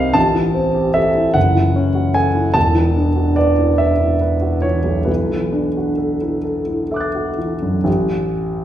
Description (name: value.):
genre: classical, impressionist solo piano.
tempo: 43-51 BPM (dotted quarters).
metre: 6/8.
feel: rubato.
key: unclear.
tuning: A4 = 440 Hz.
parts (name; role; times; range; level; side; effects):
warm grand piano; solo; 0.0-8.6 s; E1 to A6; -14 LUFS; equal; none.
room: wet recital hall reverb, RT60 1.3 s.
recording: recorded in a church or concert hall.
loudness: -15 LUFS.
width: side -11 dB against mid.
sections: 0.0-7.9 A section.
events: none.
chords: 0.2 Am7; 1.4 Gbm7; 2.6 E11; 5.1 Bm7; 7.9 N.C..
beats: | 0.16 1.36 | 2.56 3.80 | 5.09 6.47 | 7.87.